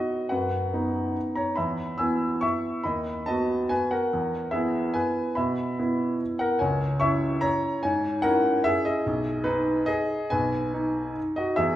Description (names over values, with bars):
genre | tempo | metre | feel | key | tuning
classical, piano waltz | 144 BPM | 3/4 | uneven beats, rubato | G# minor from 6.6 s | A4 = 443 Hz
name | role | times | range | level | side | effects
clear baby grand piano | solo | 0.0-11.8 s | B1 to E6 | -23 LUFS | equal | none
room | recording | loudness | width
wet recital hall reverb, RT60 1.6 s | heard from further back in the room | -24 LUFS | side -13 dB against mid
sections
0.0-11.8 A section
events
none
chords
0.0 B; 1.6 E; 2.9 B7/D#; 4.1 E; 6.6 C#m; 9.1 G#m/B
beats
| 0.31 0.73 1.16 | 1.58 2.00 2.43 | 2.86 3.28 3.71 | 4.13 4.53 4.96 | 5.38 5.79 6.21 | 6.61 7.01 7.43 | 7.83 8.24 8.66 | 9.06 9.46 9.88 | 10.32 10.74 11.17 | 11.58